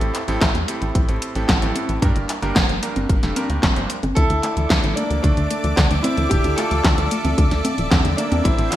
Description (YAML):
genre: italo disco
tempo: 112 BPM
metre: 4/4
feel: straight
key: D minor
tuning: A4 = 440 Hz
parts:
  - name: bright electric grand piano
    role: stabs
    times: 0.0-4.0 s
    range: G2 to C5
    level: -25 LUFS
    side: right 1 dB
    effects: wide subtle chorus, ping-pong delay
  - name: tight sequencer bass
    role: bass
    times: 0.0-8.7 s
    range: D1 to G2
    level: -23 LUFS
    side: equal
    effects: none
  - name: house drum kit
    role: drums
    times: 0.0-8.8 s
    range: congas, handclaps, hi-hat, snare drum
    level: -22 LUFS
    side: equal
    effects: studio reverb, gated reverb
  - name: electronic kick drum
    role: drums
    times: 0.4-8.6 s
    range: none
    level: -20 LUFS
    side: equal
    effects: studio reverb
  - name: clear concert grand piano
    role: melody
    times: 4.2-8.8 s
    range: A3 to A4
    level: -23 LUFS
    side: equal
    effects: ping-pong delay
  - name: lush unison pad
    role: sustained chords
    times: 4.2-8.8 s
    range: A4 to D6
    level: -26 LUFS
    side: equal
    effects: chorus
  - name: soft round pluck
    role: arpeggios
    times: 4.2-8.8 s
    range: A2 to A3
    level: -26 LUFS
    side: left 1 dB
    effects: chorus, cassette tape, ping-pong delay
room: moderate lush hall reverb, RT60 1.6 s, digital ambience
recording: bright 1980s-style digital production, vinyl crackle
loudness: -17 LUFS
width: side -13 dB against mid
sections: 0.0-8.8 A section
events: none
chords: 0.0 Am7; 2.0 Gm; 4.2 Dsus2